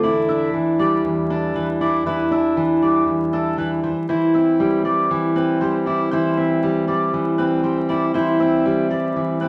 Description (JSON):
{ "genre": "acoustic pop", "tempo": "118 BPM", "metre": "4/4", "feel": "straight", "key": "unclear", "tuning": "A4 = 440 Hz", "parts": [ { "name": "fingerpicked plugged-in steel-string acoustic guitar", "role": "accompaniment", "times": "0.0-9.5 s", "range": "E2 to E4", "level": "-20 LUFS", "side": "equal", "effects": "none" }, { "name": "mandolin", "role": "arpeggios", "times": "0.0-9.5 s", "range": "A4 to E5", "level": "-28 LUFS", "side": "equal", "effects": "none" } ], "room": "moderate large studio reverb, RT60 0.9 s", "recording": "vinyl crackle", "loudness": "-19 LUFS", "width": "mono", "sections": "0.0-9.5 A section", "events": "none", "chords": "0.0 Em7; 3.8 C/E" }